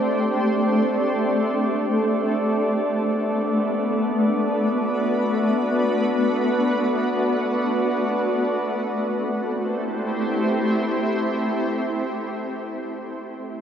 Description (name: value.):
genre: ambient.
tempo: free time.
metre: none.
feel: none.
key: A dorian.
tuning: A4 = 436 Hz.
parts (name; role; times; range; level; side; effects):
shimmering ambient pad; sustained chords; 0.0-12.8 s; A3 to C5; -21 LUFS; equal; chorus, built-in reverb.
glass harmonica; texture; 0.0-8.8 s; D5 to D6; -30 LUFS; right 1 dB; none.
room: wet huge ambient reverb, RT60 8.9 s.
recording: none.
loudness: -20 LUFS.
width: side -8 dB against mid.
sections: 0.0-8.8 A section; 8.8-12.0 B section.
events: none.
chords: 0.0 D7sus4; 2.3 Bm7; 8.8 Am7.